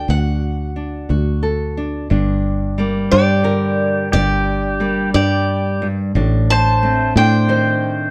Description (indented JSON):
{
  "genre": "acoustic folk duo or small band",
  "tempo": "60 BPM (dotted quarters)",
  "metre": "6/8",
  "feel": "straight",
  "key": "G harmonic minor",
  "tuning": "A4 = 439 Hz",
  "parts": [
    { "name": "picked acoustic archtop guitar", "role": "melody", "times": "0.0-8.1 s", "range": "D5 to A5", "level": "-23 LUFS", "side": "equal", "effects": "plate reverb" },
    { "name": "nylon-string guitar", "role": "accompaniment", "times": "0.0-8.1 s", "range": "G2 to C5", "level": "-22 LUFS", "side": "equal", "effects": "none" },
    { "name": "fingered electric bass", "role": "bass", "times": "0.0-8.1 s", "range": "G1 to A2", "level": "-21 LUFS", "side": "equal", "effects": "none" },
    { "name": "pedal steel guitar", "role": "second line", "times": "3.1-8.1 s", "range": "G4 to C5", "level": "-23 LUFS", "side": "equal", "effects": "none" }
  ],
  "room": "moderate small room reverb, RT60 0.6 s",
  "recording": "dark, warm production",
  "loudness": "-17 LUFS",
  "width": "mono",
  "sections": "0.0-2.1 A section; 2.1-8.1 B section",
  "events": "none",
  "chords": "0.0 D; 2.1 Gm; 6.1 Adim",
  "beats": "| 0.09 1.10 | 2.11 3.12 | 4.13 5.14 | 6.15 7.15"
}